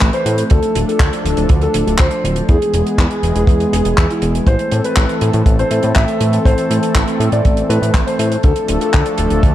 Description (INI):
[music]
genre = italo disco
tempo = 121 BPM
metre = 4/4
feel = straight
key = A harmonic minor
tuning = A4 = 440 Hz
[part]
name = dark concert grand piano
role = melody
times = 0.0-9.1 s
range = E4 to E5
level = -20 LUFS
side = equal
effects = ping-pong delay
[part]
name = warm analog pad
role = sustained chords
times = 0.0-9.5 s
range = E3 to B4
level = -19 LUFS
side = equal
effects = chorus
[part]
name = fat analog bass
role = bass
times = 0.0-9.5 s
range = D1 to A2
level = -17 LUFS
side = equal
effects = none
[part]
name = damped 70s drum kit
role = drums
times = 0.0-9.5 s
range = handclaps, hi-hat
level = -22 LUFS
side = equal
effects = studio reverb
[part]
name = kick drum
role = drums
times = 0.0-9.5 s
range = none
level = -13 LUFS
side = equal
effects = studio reverb
[sound]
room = light reverb, small room ambience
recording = dark, warm production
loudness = -12 LUFS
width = side -13 dB against mid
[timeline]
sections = 0.0-9.5 A section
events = none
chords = 0.0 Am; 0.5 Dm; 2.5 E; 4.5 Am; 8.4 Dm